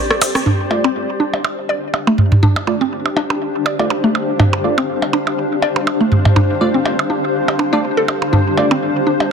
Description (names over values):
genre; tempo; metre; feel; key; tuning
minimal techno; 122 BPM; 4/4; swing 56% on 16ths; D minor; A4 = 441 Hz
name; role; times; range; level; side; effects
granular cloud pad; texture; 0.0-9.3 s; D4 to F5; -19 LUFS; left 2 dB; built-in reverb
mallet-like synth pluck; riff; 0.1-9.1 s; A3 to D5; -20 LUFS; equal; chorus, tape echo
electronic percussion blips and toms; percussion; 0.2-9.3 s; none; -16 LUFS; right 2 dB; dub echo
wavetable chord stab; stabs; 0.7-8.7 s; A3 to D5; -22 LUFS; right 4 dB; dub echo
room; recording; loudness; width
light reverb; dense, heavily limited modern master; -14 LUFS; side -6 dB against mid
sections
0.5-9.3 A section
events
filter sweep on synth stab 0.5-9.3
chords
0.5 Dm